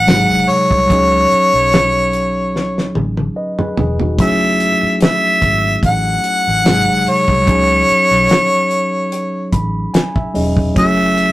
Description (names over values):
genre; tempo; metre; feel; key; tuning
lush 1970s-style soul; 73 BPM; 4/4; swing 54% on 16ths; unclear; A4 = 437 Hz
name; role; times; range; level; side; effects
warm harmonica; melody; 0.0-11.3 s; C#5 to F#5; -13 LUFS; equal; none
mellow tine electric piano; accompaniment; 0.0-11.3 s; B#2 to B5; -18 LUFS; equal; none
vintage muted fingered electric bass; bass; 0.0-11.3 s; E1 to C#2; -21 LUFS; equal; none
damped 70s drum kit; drums; 0.1-11.3 s; hi-hat, kick drum, snare drum, toms; -17 LUFS; equal; none
room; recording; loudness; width
moderate small room reverb, RT60 0.6 s; rough rehearsal-room recording, tube saturation; -12 LUFS; side -16 dB against mid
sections
0.0-11.3 A section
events
drum fill 2.5-4.2; tine electric piano fill 9.1-10.8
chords
0.1 G#7; 0.9 C#9sus4; 4.2 F#m9; 6.7 G#7; 7.5 C#9sus4; 10.8 F#m9